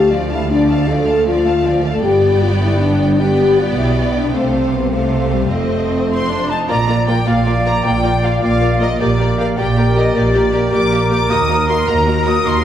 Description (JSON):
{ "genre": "cinematic", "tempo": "104 BPM (dotted quarters)", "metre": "12/8", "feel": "straight", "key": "F lydian, Bb major from 6.7 s", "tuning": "A4 = 440 Hz", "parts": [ { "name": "rich symphonic violin section", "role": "melody", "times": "0.0-12.6 s", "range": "D5 to Eb6", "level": "-25 LUFS", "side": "left 3 dB", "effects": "none" }, { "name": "warm symphonic violin section", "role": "second line", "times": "0.0-12.5 s", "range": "Bb4 to F5", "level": "-26 LUFS", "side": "left 3 dB", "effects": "none" }, { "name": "rich symphonic viola section", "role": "accompaniment", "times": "0.0-12.5 s", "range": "F3 to G4", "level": "-24 LUFS", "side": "right 2 dB", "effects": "none" }, { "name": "mellow French horn section", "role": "sustained chords", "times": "0.0-12.6 s", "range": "G3 to A4", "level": "-18 LUFS", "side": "left 2 dB", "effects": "none" }, { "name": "rich symphonic double bass section", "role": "bass", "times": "0.0-12.6 s", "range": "F1 to Eb2", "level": "-20 LUFS", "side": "right 2 dB", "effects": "none" }, { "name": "warm symphonic cello section", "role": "bass", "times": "0.0-12.6 s", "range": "D2 to C3", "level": "-20 LUFS", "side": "right 2 dB", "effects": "none" }, { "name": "silver concert flute", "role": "second line", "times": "6.1-12.6 s", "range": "D5 to Eb6", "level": "-23 LUFS", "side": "left 1 dB", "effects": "none" }, { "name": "dark clarinet", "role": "second line", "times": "6.7-12.6 s", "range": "F4 to G4", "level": "-26 LUFS", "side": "left 2 dB", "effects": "none" }, { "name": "warm oboe", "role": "second line", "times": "6.7-12.6 s", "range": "Bb4 to D5", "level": "-24 LUFS", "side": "right 2 dB", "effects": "none" }, { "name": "mellow trumpet section", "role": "stabs", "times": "6.7-12.6 s", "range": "Bb4 to D5", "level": "-21 LUFS", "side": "equal", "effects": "none" } ], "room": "wet scoring stage reverb, RT60 2.0 s", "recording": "heard from further back in the room", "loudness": "-13 LUFS", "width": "side -10 dB against mid", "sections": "0.0-6.7 A section; 6.7-12.6 B section", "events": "none", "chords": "0.0 Dm; 2.0 G; 4.3 F/C; 5.5 F7; 6.7 Bb; 9.0 Gm/Bb; 11.3 Ebm" }